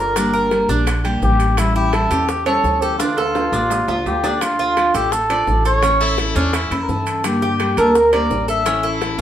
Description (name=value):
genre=latin, Cuban son and guajira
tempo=169 BPM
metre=4/4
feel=straight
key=D harmonic minor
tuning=A4 = 440 Hz
part: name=trumpet with cup mute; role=melody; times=0.0-9.0 s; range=E4 to E5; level=-19 LUFS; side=left 1 dB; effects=none
part: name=picked steel-string acoustic guitar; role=accompaniment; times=0.0-9.2 s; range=D3 to G4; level=-24 LUFS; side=left 2 dB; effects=none
part: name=Cuban tres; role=arpeggios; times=0.0-9.2 s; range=C#4 to D5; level=-20 LUFS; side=right 3 dB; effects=none
part: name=upright bass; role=bass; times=0.0-9.2 s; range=G1 to G2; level=-22 LUFS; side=equal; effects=none
part: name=bongos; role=percussion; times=0.2-9.2 s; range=none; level=-28 LUFS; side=left 5 dB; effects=none
part: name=maracas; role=percussion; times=0.2-9.2 s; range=none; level=-34 LUFS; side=right 6 dB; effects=none
part: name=timbales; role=percussion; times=0.2-9.2 s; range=none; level=-28 LUFS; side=right 3 dB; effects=none
part: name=brilliant trumpet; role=second line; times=6.0-9.2 s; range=D4 to E4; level=-24 LUFS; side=left 4 dB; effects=none
room=wet large studio reverb, RT60 0.8 s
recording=band playing live in one room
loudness=-15 LUFS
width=side -10 dB against mid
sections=0.0-4.4 A section; 4.4-9.2 A section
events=drum fill 3.0-4.4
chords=0.2 Gm; 1.6 A7; 3.0 Dm; 5.8 A; 7.2 Gm; 8.7 A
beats=| 0.16 0.51 0.87 1.22 | 1.58 1.93 2.29 2.64 | 3.00 3.35 3.70 4.06 | 4.41 4.77 5.12 5.48 | 5.83 6.18 6.54 6.89 | 7.25 7.60 7.95 8.31 | 8.66 9.01